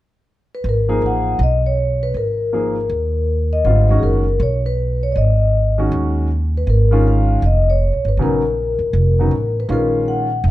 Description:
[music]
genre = jazz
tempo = 159 BPM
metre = 4/4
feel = swing 64% on 8ths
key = G# dorian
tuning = A4 = 440 Hz
[part]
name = vibraphone with soft mallets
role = melody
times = 0.5-10.5 s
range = G#4 to F#5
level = -20 LUFS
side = left 2 dB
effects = none
[part]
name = upright bass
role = bass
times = 0.6-10.5 s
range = E#1 to D#2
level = -17 LUFS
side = right 1 dB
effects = none
[part]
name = warm concert grand piano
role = accompaniment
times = 0.9-10.3 s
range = C#3 to G#4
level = -22 LUFS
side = equal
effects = none
[sound]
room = moderate large studio reverb, RT60 1.2 s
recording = dark, warm production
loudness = -15 LUFS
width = side -16 dB against mid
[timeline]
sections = 0.6-10.5 A section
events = none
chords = 0.0 N.C.; 0.6 G#m9; 6.7 A#m

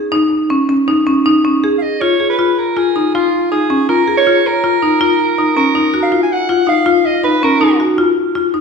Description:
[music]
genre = contemporary instrumental, chamber music in an uneven meter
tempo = 161 BPM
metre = 5/4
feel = straight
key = unclear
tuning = A4 = 439 Hz
[part]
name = marimba with hard mallets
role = arpeggios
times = 0.0-8.6 s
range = Db4 to Ab4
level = -12 LUFS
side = left 2 dB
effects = none
[part]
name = raspy soprano saxophone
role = melody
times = 1.8-7.8 s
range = F4 to Ab5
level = -16 LUFS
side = right 4 dB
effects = none
[sound]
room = wet recital hall reverb, RT60 1.5 s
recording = heard from further back in the room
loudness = -11 LUFS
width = side -5 dB against mid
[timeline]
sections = 0.0-2.0 A section; 2.0-8.6 B section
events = none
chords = 0.0 Dbsus2; 2.0 Bb5; 5.8 Ebsus2

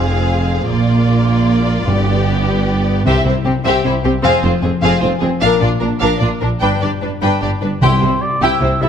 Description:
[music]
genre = cinematic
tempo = 101 BPM (dotted quarters)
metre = 6/8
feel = straight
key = C major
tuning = A4 = 440 Hz
[part]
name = warm symphonic violin section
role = melody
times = 0.0-8.9 s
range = G4 to G5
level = -22 LUFS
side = left 2 dB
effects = none
[part]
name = warm symphonic violin section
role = second line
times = 0.0-8.9 s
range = C4 to B4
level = -20 LUFS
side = left 3 dB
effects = none
[part]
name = rich symphonic viola section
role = accompaniment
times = 0.0-8.9 s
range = Bb3 to E4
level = -22 LUFS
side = right 1 dB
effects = none
[part]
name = concert harp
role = arpeggios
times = 0.0-8.9 s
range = F2 to B5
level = -23 LUFS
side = left 7 dB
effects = none
[part]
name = rich symphonic cello section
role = bass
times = 0.0-8.9 s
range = F2 to C3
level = -19 LUFS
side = right 2 dB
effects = none
[part]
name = rich symphonic double bass section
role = bass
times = 0.0-8.9 s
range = F1 to C2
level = -19 LUFS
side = right 3 dB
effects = none
[part]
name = timpani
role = percussion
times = 1.9-3.6, 7.8-8.4 s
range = G2 to C3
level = -21 LUFS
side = equal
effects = none
[part]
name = mellow oboe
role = second line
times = 7.8-8.9 s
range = A4 to E5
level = -18 LUFS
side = equal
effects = none
[sound]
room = moderate scoring stage reverb, RT60 1.5 s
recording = none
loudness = -13 LUFS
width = side -8 dB against mid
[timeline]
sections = 0.0-7.8 A section; 7.8-8.9 B section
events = build-up 0.0-7.8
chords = 0.0 Fm; 0.7 Bb; 1.9 G; 3.1 C; 4.2 Fm; 5.4 Bb; 6.6 G; 7.8 C

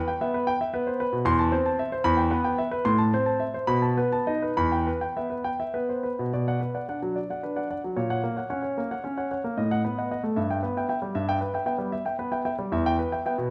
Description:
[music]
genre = classical, baroque-style suite movement for grand piano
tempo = 67-79 BPM (dotted quarters)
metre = 6/8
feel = rubato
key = E minor, B minor from 6.4 s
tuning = A4 = 439 Hz
[part]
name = clear concert grand piano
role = solo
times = 0.0-13.5 s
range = E2 to C6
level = -27 LUFS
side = equal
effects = none
[sound]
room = moderate recital hall reverb, RT60 1.7 s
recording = dark, warm production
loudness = -27 LUFS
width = mono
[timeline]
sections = 0.0-6.4 A section; 6.4-13.5 A section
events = none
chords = 0.0 Em; 1.3 Am/E; 2.1 Em; 2.9 Am; 3.7 B7; 4.6 Em; 6.4 Bm; 8.0 F#/A#; 9.6 B7/A; 10.4 Em/G; 12.7 Em

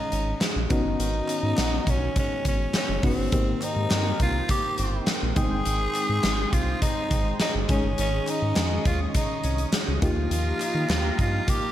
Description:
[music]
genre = 1980s-style pop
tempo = 103 BPM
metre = 4/4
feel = straight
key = Ab major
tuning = A4 = 440 Hz
[part]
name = raspy tenor saxophone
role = melody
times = 0.0-11.7 s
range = C4 to Ab4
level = -29 LUFS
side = left 1 dB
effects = slapback echo
[part]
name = FM electric piano with tremolo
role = accompaniment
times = 0.0-11.7 s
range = Ab3 to G5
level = -31 LUFS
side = left 3 dB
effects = slapback echo
[part]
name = direct-recorded clean electric guitar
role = riff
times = 0.0-11.7 s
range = Eb3 to Ab4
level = -36 LUFS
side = right 6 dB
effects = lush chorus, slapback echo
[part]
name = round analog bass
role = bass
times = 0.1-11.4 s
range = F#1 to Eb3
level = -27 LUFS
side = equal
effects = none
[part]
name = big rock drum kit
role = drums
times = 0.1-11.6 s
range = hi-hat, kick drum, snare drum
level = -26 LUFS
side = equal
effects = none
[part]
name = group handclap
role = percussion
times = 0.4-11.0 s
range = none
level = -44 LUFS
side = equal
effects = none
[part]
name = lush unison pad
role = sustained chords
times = 3.9-11.7 s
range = Ab3 to Eb6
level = -36 LUFS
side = right 1 dB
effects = chorus, phaser
[sound]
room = light reverb, studio ambience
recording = none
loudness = -22 LUFS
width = side -12 dB against mid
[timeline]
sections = 0.0-11.7 A section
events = none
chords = 0.0 Dbsus2; 0.7 Badd9; 3.3 Eb6/Ab; 5.4 Abmaj7; 7.7 Dbsus2; 10.0 Ebadd9

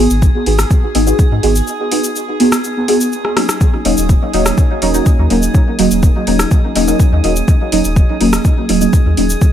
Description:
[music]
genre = dub techno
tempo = 124 BPM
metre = 4/4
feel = straight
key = Eb minor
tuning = A4 = 441 Hz
[part]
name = deep mellow chord stab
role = stabs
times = 0.0-9.3 s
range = Gb3 to Ab4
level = -14 LUFS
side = right 1 dB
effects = chorus, phaser, sidechain pumping, dub echo
[part]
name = soft dub sub bass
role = bass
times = 0.0-9.4 s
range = Eb1 to Ab2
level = -16 LUFS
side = equal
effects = sidechain pumping
[part]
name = drifting glass-harmonics texture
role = texture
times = 0.0-9.5 s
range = Ab4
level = -26 LUFS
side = right 2 dB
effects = chorus, built-in reverb, sidechain pumping
[part]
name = deep house drum kit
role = drums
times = 0.1-9.5 s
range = cabasa, hi-hat, rim click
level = -20 LUFS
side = equal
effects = none
[part]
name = electronic kick drum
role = drums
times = 0.2-9.5 s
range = none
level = -11 LUFS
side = equal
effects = none
[sound]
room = light reverb, digital ambience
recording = none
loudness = -10 LUFS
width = side -10 dB against mid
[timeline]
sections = 0.0-9.5 A section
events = break 1.7-3.6; drum fill 3.2-3.6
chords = 0.0 Abm7; 3.6 Ebm7

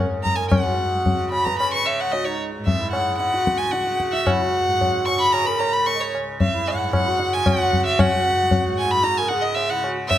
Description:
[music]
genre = indian classical, Hindustani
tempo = 112 BPM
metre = 7/4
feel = straight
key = C# raga bhimpalasi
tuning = A4 = 440 Hz
[part]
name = pedal harmonium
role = second line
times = 0.0-10.0 s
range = D#4 to D#5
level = -27 LUFS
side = right 4 dB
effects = none
[part]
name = tanpura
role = drone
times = 0.0-10.2 s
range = C#2 to C#3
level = -31 LUFS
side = right 1 dB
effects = none
[part]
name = rich violin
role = melody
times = 0.2-10.2 s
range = C#5 to C#6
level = -21 LUFS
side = left 1 dB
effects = none
[part]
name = tabla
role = percussion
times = 0.3-10.2 s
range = none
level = -23 LUFS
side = left 2 dB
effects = none
[sound]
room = wet recital hall reverb, RT60 1.4 s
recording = none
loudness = -18 LUFS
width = side -12 dB against mid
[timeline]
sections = 0.5-10.2 A section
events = speeding up 0.0-10.2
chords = none

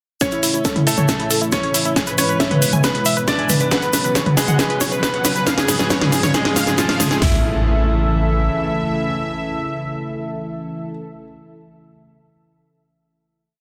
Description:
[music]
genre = uplifting trance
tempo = 137 BPM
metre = 4/4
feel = straight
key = A major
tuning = A4 = 441 Hz
[part]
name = supersaw stab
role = melody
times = 0.2-10.9 s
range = E4 to G#5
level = -26 LUFS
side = equal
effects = sidechain pumping, low-pass filter, delay
[part]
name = bright concert grand piano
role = second line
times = 0.2-10.9 s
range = E#3 to D5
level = -26 LUFS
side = equal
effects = delay
[part]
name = lush unison pad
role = sustained chords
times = 0.2-10.9 s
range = G#2 to A4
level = -27 LUFS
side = equal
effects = chorus, sidechain pumping
[part]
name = house drum kit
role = drums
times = 0.2-7.3 s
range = hi-hat, kick drum, snare drum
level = -25 LUFS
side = equal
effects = high-pass filter on kick, high-pass filter on snare, high-pass filter on hats
[part]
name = techno drum kit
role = drums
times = 0.2-7.2 s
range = hi-hat, snare drum, toms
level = -21 LUFS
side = equal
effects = none
[part]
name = egg shaker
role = percussion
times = 0.2-7.2 s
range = none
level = -28 LUFS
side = equal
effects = none
[part]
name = riser and impact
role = sound effects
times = 2.1-10.9 s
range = none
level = -31 LUFS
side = equal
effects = none
[part]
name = solid FM bass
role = bass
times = 0.3-8.5 s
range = E1 to C#2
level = -26 LUFS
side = equal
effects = none
[sound]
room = light reverb, digital ambience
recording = dense, heavily limited modern master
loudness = -18 LUFS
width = mono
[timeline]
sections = 0.2-7.2 build; 7.2-10.7 final chord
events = build-up 0.2-7.2; drum fill 0.2-7.2; filter sweep on supersaw synth 0.2-7.2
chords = 0.2 A; 2.0 E; 3.7 Bsus2; 5.5 C#; 7.2 A

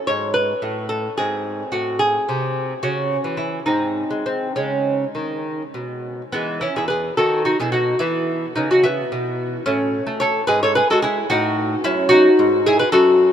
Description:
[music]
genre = classical, baroque-style dance for lute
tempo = 72 BPM (dotted quarters)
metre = 6/8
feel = rubato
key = C# minor, E major from 6.3 s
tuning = A4 = 440 Hz
[part]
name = lute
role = solo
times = 0.0-13.3 s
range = E2 to C#5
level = -17 LUFS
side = equal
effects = none
[sound]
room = moderate huge ambient reverb, RT60 9.0 s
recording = minimal, uncompressed stereo recording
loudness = -17 LUFS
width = side -9 dB against mid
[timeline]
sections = 0.0-6.3 A section; 6.3-13.3 A section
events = none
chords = 0.0 F#m (rootless); 1.2 G#; 2.8 C#m; 3.7 G#; 4.6 C#5; 6.3 E; 7.2 B/D#; 8.0 E5; 9.7 N.C.; 10.5 E/G#; 11.3 A

